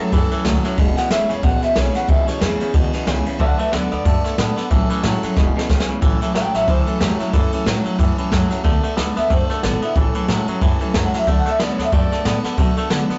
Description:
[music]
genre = rockabilly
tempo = 183 BPM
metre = 4/4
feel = swing 58% on 8ths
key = A major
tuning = A4 = 441 Hz
[part]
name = electric guitar through a small old amp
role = melody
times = 0.0-12.4 s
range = E4 to A5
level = -25 LUFS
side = equal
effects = none
[part]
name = picked steel-string acoustic guitar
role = accompaniment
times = 0.0-13.2 s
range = A2 to A4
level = -28 LUFS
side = equal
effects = none
[part]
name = twangy electric guitar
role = riff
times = 0.0-13.2 s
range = E2 to B3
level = -26 LUFS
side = equal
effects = none
[part]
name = upright bass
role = bass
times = 0.1-13.1 s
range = E1 to D3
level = -26 LUFS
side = equal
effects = none
[part]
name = jazz brush drum kit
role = drums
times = 0.1-13.2 s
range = kick drum, ride cymbal, snare drum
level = -21 LUFS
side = equal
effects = none
[sound]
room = moderate small room reverb, RT60 0.5 s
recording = rough rehearsal-room recording, warm saturation, nothing above 7.8 kHz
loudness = -18 LUFS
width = mono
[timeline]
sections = 0.0-6.0 A section; 6.0-13.2 B section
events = clean electric guitar solo 0.0-6.0; drum fill 5.4-6.0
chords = 0.0 A6; 0.8 E6; 3.4 D6; 4.7 A6; 5.4 E6; 6.0 A6; 8.6 D6; 10.0 A6; 11.3 D6

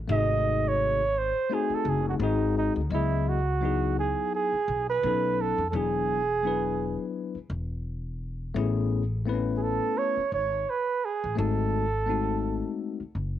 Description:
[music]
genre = hip hop, jazz-hop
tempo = 85 BPM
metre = 4/4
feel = swing 57% on 16ths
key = C# minor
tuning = A4 = 440 Hz
[part]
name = upright bass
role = bass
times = 0.0-13.4 s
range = E1 to E#2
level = -30 LUFS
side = left 1 dB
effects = none
[part]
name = mellow flugelhorn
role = melody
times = 0.1-12.8 s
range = D#4 to D#5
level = -27 LUFS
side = right 5 dB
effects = none
[part]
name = bell-like tine electric piano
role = accompaniment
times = 0.1-13.0 s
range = B#2 to D#5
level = -30 LUFS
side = left 7 dB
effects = none
[sound]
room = moderate spring reverb, RT60 1.4 s, small room ambience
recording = home recording on cassette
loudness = -25 LUFS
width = side -11 dB against mid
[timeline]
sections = 0.0-2.9 A section; 2.9-13.4 B section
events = flugelhorn solo 0.0-2.9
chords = 0.1 G#7b9; 2.2 G#7; 2.9 C#m11; 5.0 B7; 5.7 E9; 8.6 Amaj9; 11.4 G#7b9

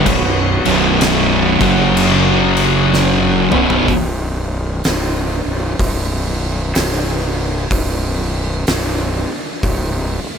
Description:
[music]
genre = stoner and doom metal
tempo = 63 BPM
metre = 4/4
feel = swing 62% on 8ths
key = unclear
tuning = A4 = 441 Hz
[part]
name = tonewheel organ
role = sustained chords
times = 0.0-3.9 s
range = F#3 to C#5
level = -22 LUFS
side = right 1 dB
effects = slow rotary speaker
[part]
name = fuzz guitar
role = riff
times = 0.0-3.9 s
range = B1 to F#3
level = -21 LUFS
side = equal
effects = distortion
[part]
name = thick fuzz guitar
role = riff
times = 0.0-3.9 s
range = B1 to F#3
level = -17 LUFS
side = left 10 dB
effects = distortion
[part]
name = thick fuzz guitar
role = riff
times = 0.0-3.9 s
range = B1 to F#3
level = -16 LUFS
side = right 10 dB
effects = distortion
[part]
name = fuzz fingered electric bass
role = bass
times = 0.0-10.3 s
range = B0 to F#1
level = -20 LUFS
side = equal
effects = overdrive
[part]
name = oversized low-tuned drum kit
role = drums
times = 0.1-9.9 s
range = crash cymbal, hi-hat, kick drum, snare drum, toms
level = -19 LUFS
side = left 1 dB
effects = none
[sound]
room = light reverb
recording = none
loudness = -13 LUFS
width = side -7 dB against mid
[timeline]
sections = 0.0-3.9 A section; 3.9-10.4 B section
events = drum fill 2.9-3.9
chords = 0.0 B5; 1.5 F#5; 3.4 B5; 3.9 N.C.

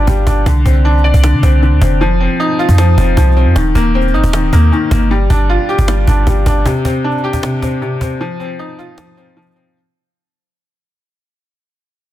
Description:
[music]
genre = hip hop, trap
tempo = 155 BPM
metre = 4/4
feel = half-time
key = C minor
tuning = A4 = 440 Hz
[part]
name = felt-muted upright piano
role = accompaniment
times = 0.0-9.8 s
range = C3 to D5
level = -15 LUFS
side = left 2 dB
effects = low-pass filter
[part]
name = clean 808-style bass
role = bass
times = 0.0-6.6 s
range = D1 to C3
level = -11 LUFS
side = equal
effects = none
[part]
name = cajon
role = drums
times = 0.1-9.6 s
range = none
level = -19 LUFS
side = equal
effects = none
[sound]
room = small room ambience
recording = dense, heavily limited modern master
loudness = -10 LUFS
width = side -14 dB against mid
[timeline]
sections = 0.0-6.7 A section; 6.7-9.8 B section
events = fade-out 6.7-9.8; break 8.2-9.8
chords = 0.5 Csus2; 2.0 F5; 3.6 Eb6; 5.1 G5; 6.7 Csus2; 8.2 F5

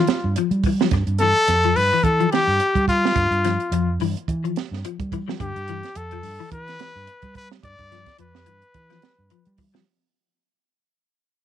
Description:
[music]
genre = afrobeat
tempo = 107 BPM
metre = 4/4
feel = swing 56% on 16ths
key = G mixolydian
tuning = A4 = 438 Hz
[part]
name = breathy trumpet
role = melody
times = 0.0-9.6 s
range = F4 to D5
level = -21 LUFS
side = left 2 dB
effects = none
[part]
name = clean electric guitar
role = arpeggios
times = 0.0-9.8 s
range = D3 to F3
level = -26 LUFS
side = left 13 dB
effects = ensemble chorus
[part]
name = fingered electric bass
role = bass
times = 0.0-9.8 s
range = F2 to G3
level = -24 LUFS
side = right 1 dB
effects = none
[part]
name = compact cocktail drum kit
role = drums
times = 0.1-9.9 s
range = hi-hat, kick drum, snare drum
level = -26 LUFS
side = right 6 dB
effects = none
[sound]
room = small room ambience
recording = 1960s-style stereo with parts hard left and right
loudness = -18 LUFS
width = side -10 dB against mid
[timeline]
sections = 0.0-9.9 A section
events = fade-out 0.0-9.9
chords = 0.0 G7

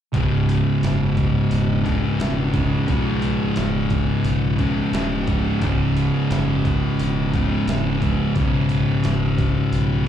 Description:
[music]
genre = stoner and doom metal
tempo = 88 BPM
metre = 4/4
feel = straight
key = C# minor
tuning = A4 = 440 Hz
[part]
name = thick fuzz guitar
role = riff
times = 0.1-10.1 s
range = C#2 to C#3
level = -21 LUFS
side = left 5 dB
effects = distortion
[part]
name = thick fuzz guitar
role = riff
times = 0.1-10.1 s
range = C#2 to C#3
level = -24 LUFS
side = right 10 dB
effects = distortion
[part]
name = fuzz fingered electric bass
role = bass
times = 0.1-10.1 s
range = C#1 to B1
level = -25 LUFS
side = equal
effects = overdrive
[part]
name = boom bap sampler-style drum kit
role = drums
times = 0.1-9.9 s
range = hi-hat, kick drum, snare drum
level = -26 LUFS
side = right 1 dB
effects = none
[sound]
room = light reverb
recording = live gig heard through the venue's PA, club reverb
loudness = -18 LUFS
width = side -10 dB against mid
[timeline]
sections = 0.1-10.1 A section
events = none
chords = 0.1 C#m

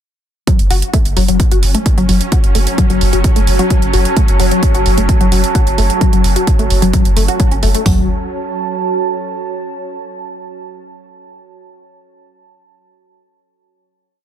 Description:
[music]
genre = driving peak-time techno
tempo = 130 BPM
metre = 4/4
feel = straight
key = F# minor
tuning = A4 = 440 Hz
[part]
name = tight sequenced synth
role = riff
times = 0.5-8.1 s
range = F#3 to F#4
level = -18 LUFS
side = left 4 dB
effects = chorus, overdrive, vintage 12-bit sampler grit, sidechain pumping, dub echo
[part]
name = swarming drone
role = drone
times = 1.3-7.9 s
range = F#3 to C#4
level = -23 LUFS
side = equal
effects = built-in reverb, sidechain pumping
[part]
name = electronic hi-hat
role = drums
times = 0.5-7.8 s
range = none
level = -22 LUFS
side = right 6 dB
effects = sidechain pumping on hats
[part]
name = techno drum kit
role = drums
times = 0.5-8.0 s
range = hi-hat, kick drum, toms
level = -13 LUFS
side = equal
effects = none
[part]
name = deep dark ambient pad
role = texture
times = 2.5-9.7 s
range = F#4 to A5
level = -21 LUFS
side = right 4 dB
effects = chorus, built-in reverb, sidechain pumping
[part]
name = saturated sub bass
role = bass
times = 0.6-8.1 s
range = F#1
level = -16 LUFS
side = equal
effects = overdrive, sidechain pumping, low-pass filter
[sound]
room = light reverb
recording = dense, heavily limited modern master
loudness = -11 LUFS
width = side -10 dB against mid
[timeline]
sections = 0.5-7.9 groove; 7.9-9.7 final chord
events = none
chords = 0.5 F#m

